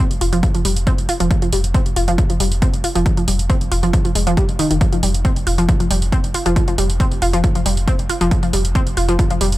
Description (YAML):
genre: driving peak-time techno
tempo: 137 BPM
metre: 4/4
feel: straight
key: unclear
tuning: A4 = 438 Hz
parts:
  - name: analog pluck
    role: riff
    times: 0.0-9.5 s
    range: Eb3 to F4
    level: -20 LUFS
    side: equal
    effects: chorus, phaser, overdrive, sidechain pumping, digital delay
  - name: warm sub bass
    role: bass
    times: 0.1-9.6 s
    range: F1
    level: -20 LUFS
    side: equal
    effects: sidechain pumping, low-pass filter
  - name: electronic hi-hat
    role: drums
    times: 0.1-9.6 s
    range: none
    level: -26 LUFS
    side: right 2 dB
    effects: sidechain pumping on hats, sidechain pumping on toms, sidechain pumping on cymbals
  - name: electronic kick drum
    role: drums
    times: 0.4-9.3 s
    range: none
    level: -18 LUFS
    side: equal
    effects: none
room: little or no reverb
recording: none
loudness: -14 LUFS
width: side -16 dB against mid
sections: 0.0-9.6 A section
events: filter sweep on synth arpeggio sound 0.0-9.6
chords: 0.0 F5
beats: 0.43 0.87 | 1.31 1.75 2.18 2.62 | 3.06 3.50 3.94 4.37 | 4.81 5.25 5.69 6.12 | 6.56 7.00 7.44 7.88 | 8.31 8.75 9.19